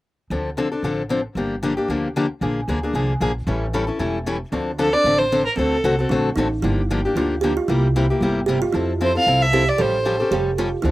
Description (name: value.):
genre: acoustic string swing (jazz manouche).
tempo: 228 BPM.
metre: 4/4.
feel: swing 55% on 8ths.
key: D minor.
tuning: A4 = 441 Hz.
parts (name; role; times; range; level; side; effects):
picked acoustic archtop guitar; accompaniment; 0.3-10.9 s; C3 to A4; -22 LUFS; left 2 dB; none.
upright bass; bass; 0.3-10.9 s; E1 to F2; -24 LUFS; equal; none.
kalimba; second line; 4.5-10.9 s; C4 to A4; -24 LUFS; right 4 dB; slapback echo.
warm violin; melody; 4.8-6.1, 9.0-10.3 s; A4 to F5; -19 LUFS; right 1 dB; none.
room: little or no reverb.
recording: recorded outdoors, with no room sound.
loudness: -18 LUFS.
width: side -16 dB against mid.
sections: 0.3-4.5 A section; 4.5-10.9 B section.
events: none.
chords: 0.3 Dm7; 1.4 Gm7; 2.4 Bb9; 3.5 A7; 4.5 Dm7; 5.6 D7b9; 6.6 Gm7; 7.7 C7; 8.7 Fmaj7; 9.8 A7alt.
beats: | 0.30 0.57 0.83 1.09 | 1.36 1.62 1.89 2.15 | 2.41 2.67 2.94 3.20 | 3.46 3.73 3.99 4.25 | 4.52 4.78 5.04 5.31 | 5.57 5.84 6.10 6.36 | 6.63 6.89 7.15 7.42 | 7.68 7.94 8.21 8.47 | 8.73 9.00 9.26 9.52 | 9.79 10.05 10.31 10.57 | 10.84.